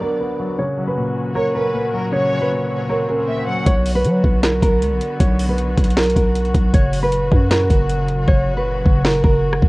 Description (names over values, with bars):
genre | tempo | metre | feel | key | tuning
hip hop, trap | 156 BPM | 4/4 | half-time | B harmonic minor | A4 = 438 Hz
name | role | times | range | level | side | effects
nylon-string guitar | melody | 0.0-9.7 s | A#4 to C#5 | -21 LUFS | right 1 dB | low-pass filter, digital delay
dark grand piano | accompaniment | 0.0-3.7 s | A#2 to D5 | -23 LUFS | left 1 dB | low-pass filter
warm chamber string section | sustained chords | 0.0-9.7 s | A#2 to F#4 | -27 LUFS | left 1 dB | low-pass filter
downlifter and swell | sound effects | 0.0-3.7 s | none | -38 LUFS | left 1 dB | none
warm symphonic violin section | second line | 1.4-3.7 s | A#4 to F#5 | -26 LUFS | left 1 dB | digital delay
growling 808-style bass | bass | 3.7-9.7 s | F#1 to F#3 | -19 LUFS | equal | none
trap drum kit | drums | 3.7-9.7 s | hi-hat, kick drum, rim click, snare drum | -16 LUFS | equal | none
room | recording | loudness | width
small room ambience | worn, warbling old tape, cassette tape, warbly pitch drift | -15 LUFS | side -22 dB against mid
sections
0.0-3.7 A section; 3.7-9.7 B section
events
filter sweep 0.0-3.7; hi-hats muted 8.3-9.7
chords
0.0 Bm; 0.6 F#; 3.7 Bm; 6.7 F#